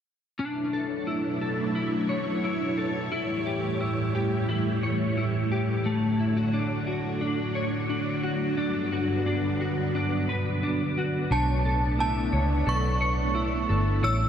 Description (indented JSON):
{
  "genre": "dream pop",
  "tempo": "88 BPM",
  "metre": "4/4",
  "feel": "straight",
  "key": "B minor",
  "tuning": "A4 = 440 Hz",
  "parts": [
    { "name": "string machine, full ensemble", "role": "sustained chords", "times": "0.4-14.3 s", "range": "G2 to C#5", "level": "-28 LUFS", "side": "right 1 dB", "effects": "phaser, ensemble chorus" },
    { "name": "clean electric guitar", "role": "arpeggios", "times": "0.4-14.3 s", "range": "A3 to C#5", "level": "-29 LUFS", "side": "left 2 dB", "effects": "ensemble chorus, digital delay" },
    { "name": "synth chime", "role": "melody", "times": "11.3-14.3 s", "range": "A5 to E6", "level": "-29 LUFS", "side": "right 2 dB", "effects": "ensemble chorus, digital delay" },
    { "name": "vintage muted fingered electric bass", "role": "bass", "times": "11.3-14.3 s", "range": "G1 to C#2", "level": "-26 LUFS", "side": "equal", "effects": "none" }
  ],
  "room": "wet huge ambient reverb, RT60 4.9 s",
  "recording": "dark, warm production",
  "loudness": "-24 LUFS",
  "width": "side -8 dB against mid",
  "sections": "0.4-11.3 A section; 11.3-14.3 B section",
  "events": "none",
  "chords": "0.4 Bm11; 3.1 A7; 5.8 Dmaj7/A; 8.6 Gmaj7; 11.3 Bm11"
}